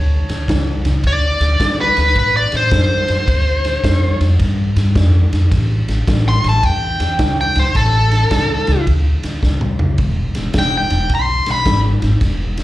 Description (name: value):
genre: electric blues shuffle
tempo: 107 BPM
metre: 4/4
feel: swing 65% on 8ths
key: A mixolydian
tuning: A4 = 440 Hz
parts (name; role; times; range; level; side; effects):
- clear upright piano; second line; 0.0-0.6 s; C#5 to A5; -32 LUFS; right 2 dB; slapback echo
- upright bass; bass; 0.0-12.6 s; E1 to A2; -16 LUFS; equal; none
- raw garage drum kit; drums; 0.3-12.6 s; kick drum, ride cymbal, snare drum, toms; -19 LUFS; equal; none
- smooth overdriven lead guitar; melody; 1.1-11.8 s; A4 to C6; -17 LUFS; left 1 dB; slapback echo
room: small room ambience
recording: live gig heard through the venue's PA, club reverb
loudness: -13 LUFS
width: side -16 dB against mid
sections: 0.0-12.6 A section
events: drum fill 9.4-10.0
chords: 0.0 A; 1.0 D7; 3.3 Dm7; 5.5 A; 10.0 E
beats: 0.48 | 1.04 1.60 2.16 2.72 | 3.28 3.84 4.39 4.96 | 5.51 6.07 6.63 7.19 | 7.75 8.31 8.87 9.43 | 9.98 10.54 11.10 11.66 | 12.21